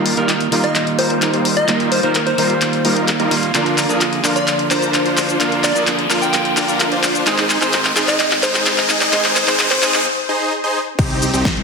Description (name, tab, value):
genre	EDM, festival progressive house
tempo	129 BPM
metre	4/4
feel	straight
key	unclear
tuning	A4 = 440 Hz
part	electric guitar at the edge of break-up	accompaniment	0.0-10.1 s	Ab2 to C5	-21 LUFS	right 3 dB	sidechain pumping, ping-pong delay
part	supersaw chords	riff	0.0-11.5 s	G3 to Eb5	-19 LUFS	equal	sidechain pumping, low-pass filter, ping-pong delay
part	riser and impact	sound effects	0.8-11.6 s	none	-25 LUFS	left 1 dB	none
part	big-room dance drum kit	drums	0.1-11.6 s	crash cymbal, handclaps, hi-hat, shaker, snare drum	-18 LUFS	left 2 dB	none
part	plucky unison lead	melody	0.6-10.1 s	C5 to G5	-21 LUFS	left 1 dB	ping-pong delay
part	fat analog bass	bass	11.0-11.6 s	C2	-21 LUFS	left 1 dB	tube saturation, sidechain pumping
part	electronic kick drum	drums	11.0-11.5 s	none	-19 LUFS	left 1 dB	overdrive
room	wet digital room reverb, RT60 1.1 s, digital ambience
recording	dense, heavily limited modern master, high-pass filter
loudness	-14 LUFS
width	side -4 dB against mid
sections	0.0-11.0 A section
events	build-up 0.0-11.0; drum fill 0.0-10.1; filter sweep on supersaw synth 0.0-11.0; filter sweep 0.0-11.0; riser 0.8-10.1; break 10.1-11.0; impact 11.0-11.6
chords	0.0 Ebadd9; 3.5 Bb; 7.3 Ab; 11.0 Cm